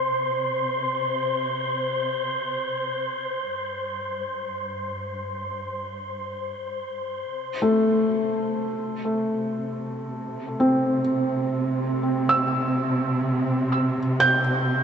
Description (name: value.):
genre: ambient.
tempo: free time.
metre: none.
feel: none.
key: unclear.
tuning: A4 = 440 Hz.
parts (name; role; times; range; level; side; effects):
warm studio cello section; bass; 0.0-14.8 s; G2 to C3; -28 LUFS; right 1 dB; none.
wind-like tuned noise texture; texture; 0.0-7.3 s; C5 to C6; -27 LUFS; left 1 dB; built-in reverb.
felt-muted upright piano; arpeggios; 7.6-14.8 s; A3 to G6; -22 LUFS; equal; tape echo.
room: wet huge ambient reverb, RT60 8.3 s.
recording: nothing above 7.9 kHz.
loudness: -23 LUFS.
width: side -7 dB against mid.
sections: 0.0-7.3 A section; 7.3-14.8 B section.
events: fade-out on cello section 0.0-7.3.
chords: 0.0 N.C.; 3.5 Gsus4; 7.3 C5.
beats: free time.